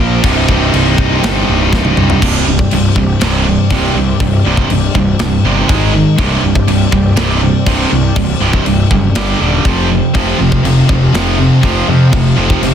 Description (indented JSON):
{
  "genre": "heavy metal",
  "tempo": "121 BPM",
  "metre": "4/4",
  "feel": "straight",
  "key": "C minor",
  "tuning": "A4 = 440 Hz",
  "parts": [
    { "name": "lush unison pad", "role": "sustained chords", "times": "0.0-12.7 s", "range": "F3 to G5", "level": "-24 LUFS", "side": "left 1 dB", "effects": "chorus" },
    { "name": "scooped high-gain guitar", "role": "riff", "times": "0.0-12.7 s", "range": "C2 to Bb4", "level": "-16 LUFS", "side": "left 8 dB", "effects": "distortion" },
    { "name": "tight distorted guitar", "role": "riff", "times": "0.0-12.7 s", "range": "C2 to Bb3", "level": "-14 LUFS", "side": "right 8 dB", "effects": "distortion" },
    { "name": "tight distorted guitar", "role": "riff", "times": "0.0-2.2, 10.1-12.7 s", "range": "C2 to Bb3", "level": "-18 LUFS", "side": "left 1 dB", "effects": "distortion" },
    { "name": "fuzz picked electric bass", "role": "bass", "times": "0.0-12.7 s", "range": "C1 to F2", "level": "-16 LUFS", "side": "left 1 dB", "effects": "overdrive" },
    { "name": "tight metal drum kit", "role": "drums", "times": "0.2-12.7 s", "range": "crash cymbal, kick drum, snare drum, toms", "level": "-16 LUFS", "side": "left 1 dB", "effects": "soft clipping on kick, soft clipping on snare" }
  ],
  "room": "little or no reverb",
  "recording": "dense, heavily limited modern master",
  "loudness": "-9 LUFS",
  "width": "side -8 dB against mid",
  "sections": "0.0-2.2 A section; 2.2-12.7 B section",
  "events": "drum fill 1.7-2.2",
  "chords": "0.2 Cm; 2.2 C5; 5.7 Ab5; 6.2 C5; 9.2 G5; 9.7 F5"
}